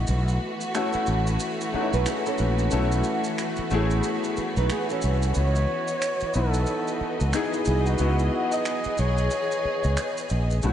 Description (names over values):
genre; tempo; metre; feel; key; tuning
R&B, neo-soul; 91 BPM; 4/4; swing 60% on 16ths; C# minor; A4 = 440 Hz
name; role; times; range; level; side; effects
clear concert grand piano; accompaniment; 0.0-10.7 s; A3 to G#4; -28 LUFS; left 2 dB; ensemble chorus
warm studio string section; sustained chords; 0.0-10.7 s; E3 to D#5; -30 LUFS; equal; none
fretless electric bass; bass; 0.0-10.7 s; A1 to C#2; -23 LUFS; equal; none
maracas and finger snaps; percussion; 0.1-10.7 s; none; -37 LUFS; right 3 dB; none
flamenco guitar; second line; 1.9-5.8 s; B3 to B4; -32 LUFS; right 5 dB; lush chorus, tape echo
breathy flugelhorn; melody; 5.4-10.3 s; F#4 to D#5; -29 LUFS; left 1 dB; tape echo
room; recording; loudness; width
moderate lush hall reverb, RT60 2.7 s; dreamy mix soaked in reverb, nothing above 10.4 kHz; -22 LUFS; side -10 dB against mid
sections
0.0-10.7 A section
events
none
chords
0.1 B7sus4; 5.3 C#m11